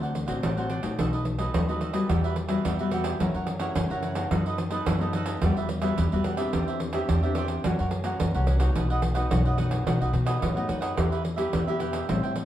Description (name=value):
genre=samba and choro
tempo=108 BPM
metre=4/4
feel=straight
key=E harmonic minor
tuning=A4 = 440 Hz
part: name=cavaquinho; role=accompaniment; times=0.0-12.4 s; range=D4 to G5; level=-32 LUFS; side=right 3 dB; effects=none
part: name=nylon-string guitar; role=accompaniment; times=0.0-12.4 s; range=F#2 to A#4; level=-30 LUFS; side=left 3 dB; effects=none
part: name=upright bass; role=bass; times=0.0-12.4 s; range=A1 to B2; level=-28 LUFS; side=equal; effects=none
part: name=pandeiro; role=percussion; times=0.0-12.4 s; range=none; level=-29 LUFS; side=right 2 dB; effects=none
room=wet studio reverb, RT60 0.7 s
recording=band playing live in one room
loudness=-24 LUFS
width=side -12 dB against mid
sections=0.0-2.1 A section; 2.1-12.4 B section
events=none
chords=0.0 D7; 1.0 B7; 2.1 Emadd9; 3.2 F#7; 4.3 B7/F#; 5.4 Emadd9; 6.5 Cadd9/E; 7.6 F#; 8.8 B; 11.0 Em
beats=0.43 0.99 1.54 | 2.10 2.65 3.20 3.76 | 4.31 4.87 5.42 5.98 | 6.53 7.09 7.64 8.20 | 8.76 9.31 9.87 10.42 | 10.98 11.53 12.09